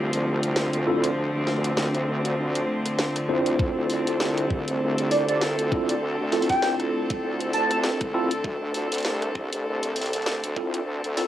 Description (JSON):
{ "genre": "glitch hop", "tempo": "99 BPM", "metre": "4/4", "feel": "swing 57% on 16ths", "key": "D minor", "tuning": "A4 = 440 Hz", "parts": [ { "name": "bright chamber string section", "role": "sustained chords", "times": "0.0-11.3 s", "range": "D3 to A4", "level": "-27 LUFS", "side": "equal", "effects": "sidechain pumping, cassette tape" }, { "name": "wobble bass", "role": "bass", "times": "0.0-11.3 s", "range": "C2 to D2", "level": "-30 LUFS", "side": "equal", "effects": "chorus, tube saturation, high-pass filter" }, { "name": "drum and bass drum kit", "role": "drums", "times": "0.1-11.3 s", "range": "hi-hat, rim click, snare drum", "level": "-29 LUFS", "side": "equal", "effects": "high-pass filter on hats, studio reverb, cassette tape, high-pass filter on snare" }, { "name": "tine electric piano", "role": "stabs", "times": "0.9-11.3 s", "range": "C4 to C5", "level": "-26 LUFS", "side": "equal", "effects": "medium stereo tremolo, sidechain pumping, low-pass filter, cassette tape, analog delay" }, { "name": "electronic kick drum", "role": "drums", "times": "3.6-10.7 s", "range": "none", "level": "-28 LUFS", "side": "equal", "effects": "studio reverb, cassette tape" }, { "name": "sync lead", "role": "melody", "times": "5.1-7.8 s", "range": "D5 to A5", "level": "-25 LUFS", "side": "right 1 dB", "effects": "wide subtle chorus, cassette tape, analog delay" } ], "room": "moderate small room ambience, RT60 0.5 s", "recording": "home recording on cassette, high-pass filter", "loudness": "-22 LUFS", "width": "side -12 dB against mid", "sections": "0.0-11.3 A section", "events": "build-up 0.0-11.3; filter sweep on tine electric piano 0.0-11.3; filter sweep on analog synth lead 0.0-11.3", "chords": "0.0 Dm7", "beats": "0.57 | 1.17 1.78 2.38 2.99 | 3.60 4.20 4.81 5.42 | 6.02 6.63 7.23 7.84 | 8.45 9.05 9.66 10.26 | 10.87" }